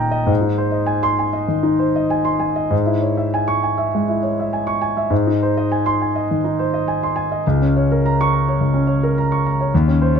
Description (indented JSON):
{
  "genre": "classical, romantic character piece for solo piano",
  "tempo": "96-108 BPM",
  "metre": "4/4",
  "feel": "rubato",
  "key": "Ab major",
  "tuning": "A4 = 440 Hz",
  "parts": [
    { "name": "warm concert grand piano", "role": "solo", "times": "0.0-10.2 s", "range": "Db2 to Db6", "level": "-16 LUFS", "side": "equal", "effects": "none" }
  ],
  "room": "light reverb",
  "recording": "dark, warm production",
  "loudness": "-16 LUFS",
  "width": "side -6 dB against mid",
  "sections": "0.3-10.2 A section",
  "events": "none",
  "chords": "0.3 Ab; 2.7 Dbm/Ab; 5.1 Ab; 7.4 Bbm/Db",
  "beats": "| 0.29 0.90 1.51 2.11 | 2.72 3.33 3.94 4.52 | 5.11 5.69 6.27 6.85 | 7.44 8.02 8.58 9.15 | 9.72"
}